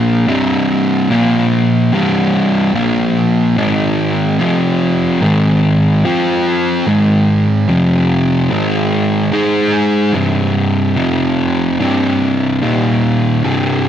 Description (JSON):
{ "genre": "metal", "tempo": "73 BPM", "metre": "4/4", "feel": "straight", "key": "C minor", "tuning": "A4 = 440 Hz", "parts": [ { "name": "fuzz guitar", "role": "solo", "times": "0.0-13.9 s", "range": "C2 to Ab4", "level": "-11 LUFS", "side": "equal", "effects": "distortion, tape echo" } ], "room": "moderate studio reverb, RT60 0.8 s", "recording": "none", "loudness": "-11 LUFS", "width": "side -10 dB against mid", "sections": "0.0-10.2 A section; 10.2-13.9 B section", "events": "none", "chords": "0.3 C5; 1.1 Bb5; 1.9 C5; 2.7 Bb5; 3.6 Ab5; 4.4 F5; 5.2 Ab5; 6.0 F5; 6.9 Ab5; 7.7 F5; 8.5 Ab5; 10.2 C5; 11.0 F5; 11.8 C5; 12.6 Eb5" }